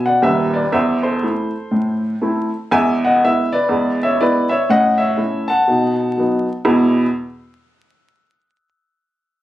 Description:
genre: jazz, stride piano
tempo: 121 BPM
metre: 4/4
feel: swing 61% on 8ths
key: E major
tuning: A4 = 439 Hz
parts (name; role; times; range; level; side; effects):
- warm upright piano; solo; 0.0-7.1 s; D#1 to A5; -14 LUFS; equal; none
room: moderate studio reverb, RT60 0.6 s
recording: recorded on a phone in the room, club reverb, vinyl crackle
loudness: -14 LUFS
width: side -14 dB against mid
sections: 0.0-6.7 A section; 6.7-8.7 B section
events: none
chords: 0.0 E7(no3); 0.7 Am/E; 2.7 E; 4.7 A; 5.7 B7; 6.7 E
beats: 0.24 | 0.73 1.23 1.72 2.22 | 2.71 3.21 3.70 4.20 | 4.69 5.19 5.68 6.18 | 6.67

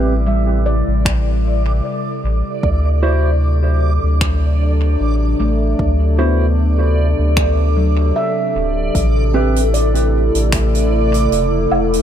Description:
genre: ambient dub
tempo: 76 BPM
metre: 4/4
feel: swing 55% on 16ths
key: A dorian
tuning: A4 = 443 Hz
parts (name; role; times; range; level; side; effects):
- warbly tape-like pad; sustained chords; 0.0-12.0 s; C3 to A4; -21 LUFS; equal; chorus, built-in reverb
- handpan; arpeggios; 0.0-12.0 s; F#3 to E5; -25 LUFS; left 1 dB; dub echo
- mellow electric guitar; stabs; 0.0-9.6 s; C4 to C5; -25 LUFS; right 3 dB; dub echo
- warm sub bass; bass; 0.0-12.0 s; D1 to D2; -15 LUFS; equal; none
- backwards swelling texture; texture; 0.0-12.0 s; D5; -25 LUFS; right 2 dB; built-in reverb
- electronic kick drum; drums; 1.1-10.7 s; none; -20 LUFS; equal; overdrive
- soft-mallet drum kit; drums; 1.1-12.0 s; finger snaps, hi-hat, woodblock; -24 LUFS; equal; dub echo
room: small room reverb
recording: none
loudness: -13 LUFS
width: side -10 dB against mid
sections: 0.0-12.0 A section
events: none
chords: 0.0 Am7; 2.6 D7; 8.9 Am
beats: 0.27 1.05 1.84 | 2.63 3.42 4.21 5.00 | 5.79 6.58 7.37 8.16 | 8.95 9.74 10.53 11.32

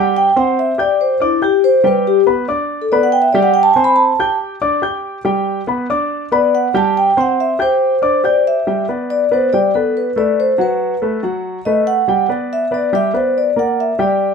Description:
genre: jazz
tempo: 141 BPM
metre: 4/4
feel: straight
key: G major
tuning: A4 = 440 Hz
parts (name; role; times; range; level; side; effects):
- vibraphone with soft mallets; melody; 0.0-14.3 s; E4 to B5; -13 LUFS; left 1 dB; none
- warm grand piano; accompaniment; 0.0-14.3 s; F#3 to G6; -18 LUFS; equal; none
room: moderate studio reverb, RT60 0.7 s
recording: minimal, uncompressed stereo recording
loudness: -13 LUFS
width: side -6 dB against mid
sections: 0.0-8.7 A section; 8.7-14.3 B section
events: vibraphone solo 0.0-8.7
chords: 0.1 D7sus4; 1.9 G; 3.6 D7sus4; 5.3 G; 7.0 D7sus4; 8.7 G; 10.4 B5; 12.1 Gmaj7; 13.8 Gm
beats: | 0.14 0.57 1.00 1.42 | 1.85 2.28 2.70 3.13 | 3.55 3.98 4.41 4.83 | 5.26 5.68 6.11 6.54 | 6.96 7.39 7.81 8.24 | 8.66 9.09 9.52 9.94 | 10.37 10.80 11.22 11.65 | 12.07 12.50 12.93 13.35 | 13.78 14.21

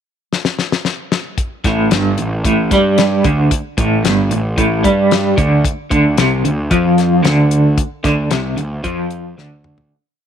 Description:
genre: psychedelic rock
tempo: 112 BPM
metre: 4/4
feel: straight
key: unclear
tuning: A4 = 440 Hz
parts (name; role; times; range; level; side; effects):
- damped 70s drum kit; drums; 0.3-9.9 s; hi-hat, kick drum, snare drum, toms; -18 LUFS; left 3 dB; none
- fuzz picked electric bass; bass; 1.6-9.9 s; G1 to G2; -19 LUFS; right 1 dB; overdrive
- electric guitar at the edge of break-up; riff; 1.7-9.9 s; G2 to G3; -14 LUFS; right 1 dB; tremolo
room: light reverb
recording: 1960s-style stereo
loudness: -13 LUFS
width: side -8 dB against mid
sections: 0.0-1.4 pickup bar; 1.4-9.9 groove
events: drum fill 0.3-1.4, 9.4-9.9; fade-out 7.8-9.9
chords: 0.0 N.C.; 1.4 Gsus2; 5.6 Csus24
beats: 0.31 0.85 | 1.38 1.92 2.45 2.98 | 3.51 4.05 4.58 5.11 | 5.64 6.18 6.71 7.24 | 7.78 8.31 8.85 9.38

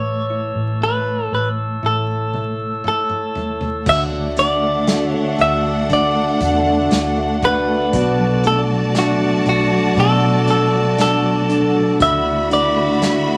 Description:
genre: pop ballad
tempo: 59 BPM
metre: 4/4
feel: straight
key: D major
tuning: A4 = 440 Hz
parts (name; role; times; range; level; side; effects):
- direct-recorded clean electric guitar; melody; 0.0-13.4 s; F#4 to E5; -21 LUFS; equal; none
- bell-like tine electric piano; accompaniment; 0.0-13.4 s; B2 to F#4; -23 LUFS; equal; none
- glass harmonica; sustained chords; 0.0-13.4 s; B3 to E6; -28 LUFS; equal; none
- vintage muted fingered electric bass; bass; 0.0-13.4 s; A1 to E2; -28 LUFS; equal; none
- unplugged drum kit; drums; 1.8-13.3 s; crash cymbal, hi-hat, kick drum, snare drum, toms; -26 LUFS; equal; none
- bright studio violin section; second line; 3.9-13.4 s; D4 to B5; -26 LUFS; equal; none
- fingerpicked plugged-in steel-string acoustic guitar; arpeggios; 3.9-13.4 s; B2 to F#4; -28 LUFS; equal; none
room: wet studio reverb, RT60 0.7 s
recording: vinyl crackle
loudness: -17 LUFS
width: mono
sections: 0.0-3.9 A section; 3.9-13.4 B section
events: drum fill 1.8-3.9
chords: 0.0 A; 3.9 Dadd9; 7.9 Bm7; 12.0 Dadd9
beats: 0.81 1.83 2.85 | 3.87 4.88 5.90 6.92 | 7.93 8.95 9.97 10.98 | 12.00 13.02

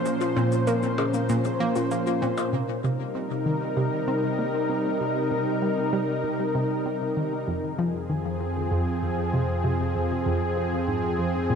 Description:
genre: ambient, sequencer-driven space music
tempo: 97 BPM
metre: 4/4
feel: straight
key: unclear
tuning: A4 = 440 Hz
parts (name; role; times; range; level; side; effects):
- lush unison pad; sustained chords; 0.0-11.6 s; F2 to C5; -25 LUFS; equal; chorus
- bubbling stepped-filter texture; texture; 0.0-2.5 s; Bb4; -41 LUFS; right 3 dB; none
- analog pluck; riff; 0.1-11.6 s; F2 to C4; -28 LUFS; equal; chorus, ping-pong delay
- cabasa and percussion blips; percussion; 0.1-2.5 s; none; -39 LUFS; left 2 dB; ping-pong delay
- warbly dusty pluck; arpeggios; 0.2-2.3 s; F3 to Bb4; -30 LUFS; left 2 dB; chorus, auto-pan, ping-pong delay
room: wet plate reverb, RT60 3.3 s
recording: dreamy mix soaked in reverb, cassette tape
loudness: -23 LUFS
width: side -6 dB against mid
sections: 0.0-2.5 A section; 2.5-11.6 B section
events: filter sweep on synth arpeggio sound 0.0-2.5, 2.5-11.6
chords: 0.0 Bbmadd9; 2.5 Cm7; 7.5 Fm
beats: | 0.06 0.67 1.29 1.91 | 2.53 3.15 3.77 4.38 | 5.00 5.62 6.24 6.86 | 7.48 8.10 8.71 9.33 | 9.95 10.57 11.19

